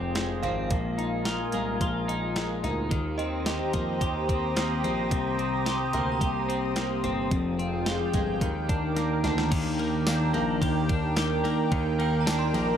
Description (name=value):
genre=dream pop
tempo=109 BPM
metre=4/4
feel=straight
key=unclear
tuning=A4 = 440 Hz
part: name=lush unison pad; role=sustained chords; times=0.0-12.8 s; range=Eb3 to Eb6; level=-30 LUFS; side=right 2 dB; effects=chorus, phaser
part: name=twelve-string electric guitar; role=arpeggios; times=0.0-12.8 s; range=F2 to G4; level=-29 LUFS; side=left 3 dB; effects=wide subtle chorus, tape echo
part: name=dark concert grand piano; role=bass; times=0.0-12.8 s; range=F1 to F2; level=-31 LUFS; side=equal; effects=none
part: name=synth chime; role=texture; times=0.0-12.8 s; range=Eb5 to C6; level=-38 LUFS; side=right 6 dB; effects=ensemble chorus, tape echo
part: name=crisp 8-bit digital drum machine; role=drums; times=0.2-12.7 s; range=crash cymbal, hi-hat, kick drum, ride cymbal, snare drum, tambourine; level=-31 LUFS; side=right 1 dB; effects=tape echo
room=moderate plate reverb, RT60 1.2 s, digital ambience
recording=echo-heavy mix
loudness=-24 LUFS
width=side -9 dB against mid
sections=0.0-9.5 A section; 9.5-12.8 B section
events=drum fill 9.0-9.5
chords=0.0 Fm9; 0.7 Bb7sus4; 2.9 Eb6; 5.1 Cm7; 7.3 Fm9; 8.4 Ebmaj7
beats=0.15 | 0.70 1.26 1.81 2.36 | 2.91 3.46 4.01 4.56 | 5.11 5.66 6.21 6.76 | 7.31 7.86 8.41 8.96 | 9.51 10.06 10.61 11.16 | 11.71 12.27